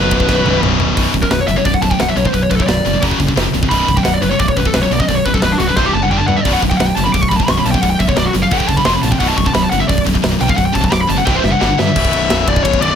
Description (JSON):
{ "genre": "heavy metal", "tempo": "175 BPM", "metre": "4/4", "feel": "straight", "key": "B minor", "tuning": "A4 = 439 Hz", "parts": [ { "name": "high-gain lead guitar", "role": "melody", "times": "0.0-13.0 s", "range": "D4 to D6", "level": "-17 LUFS", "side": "left 1 dB", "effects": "distortion" }, { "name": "clear studio string section", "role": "sustained chords", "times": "0.0-1.0, 12.0-13.0 s", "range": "none", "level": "barely audible", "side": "none", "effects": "none" }, { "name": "heavy high-gain guitar", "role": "riff", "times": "0.0-13.0 s", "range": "B1 to G3", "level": "-18 LUFS", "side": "left 13 dB", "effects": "distortion" }, { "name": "scooped high-gain guitar", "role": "riff", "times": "0.0-12.0 s", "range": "B1 to G3", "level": "-19 LUFS", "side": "right 11 dB", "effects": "distortion" }, { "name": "growling picked electric bass", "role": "bass", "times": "0.0-13.0 s", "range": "B0 to G2", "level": "-20 LUFS", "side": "equal", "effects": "overdrive" }, { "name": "tight metal drum kit", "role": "drums", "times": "0.1-12.9 s", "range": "crash cymbal, hi-hat, kick drum, ride cymbal, snare drum, toms", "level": "-19 LUFS", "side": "equal", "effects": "none" } ], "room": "little or no reverb", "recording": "none", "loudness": "-12 LUFS", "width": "side -8 dB against mid", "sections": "1.0-12.0 A section", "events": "drum fill 0.3-1.0, 5.8-6.5, 11.3-12.0; lead electric guitar solo 1.0-12.0", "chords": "0.0 Bm; 1.0 B5; 3.0 F#5; 3.4 F5; 3.7 B5; 5.8 C5; 6.1 G5; 6.5 B5; 8.5 F#5; 8.9 F5; 9.2 B5; 11.3 C5; 11.6 G5; 12.0 Bm" }